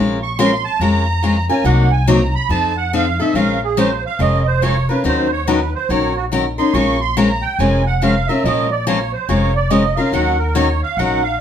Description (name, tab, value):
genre	acoustic string swing (jazz manouche)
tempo	142 BPM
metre	4/4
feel	swing 64% on 8ths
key	Bb minor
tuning	A4 = 435 Hz
part	picked steel-string acoustic guitar	accompaniment	0.0-11.2 s	C3 to Bb4	-17 LUFS	left 3 dB	none
part	upright bass	bass	0.0-11.4 s	F1 to F2	-20 LUFS	equal	none
part	musette accordion	second line	0.2-11.4 s	Gb4 to Db6	-20 LUFS	right 6 dB	none
room	wet studio reverb, RT60 0.6 s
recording	heard from further back in the room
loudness	-14 LUFS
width	side -9 dB against mid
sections	0.0-3.4 A section; 3.4-11.4 A section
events	accordion solo 0.0-11.4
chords	0.0 Bbm7; 1.7 Cm7b5; 2.5 F7; 3.4 Bbm7; 5.0 Ebm7; 6.7 Bbm7; 10.1 Ebm7